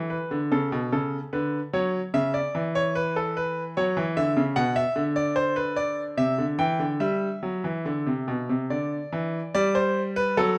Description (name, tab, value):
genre	classical, baroque-style two-part invention for grand piano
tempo	73 BPM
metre	3/4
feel	uneven beats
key	G major from 4.6 s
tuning	A4 = 440 Hz
part	bright grand piano	solo	0.0-10.6 s	B2 to G5	-26 LUFS	equal	none
room	moderate recital hall reverb, RT60 1.4 s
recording	close, detailed microphones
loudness	-26 LUFS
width	mono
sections	0.0-9.6 A section; 9.6-10.6 B section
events	none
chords	0.0 D5; 1.3 Bmadd9/D; 2.1 C#m7; 3.8 F#5; 4.6 Bm; 6.2 C; 7.0 Dsus4; 8.7 Dsus2; 9.6 G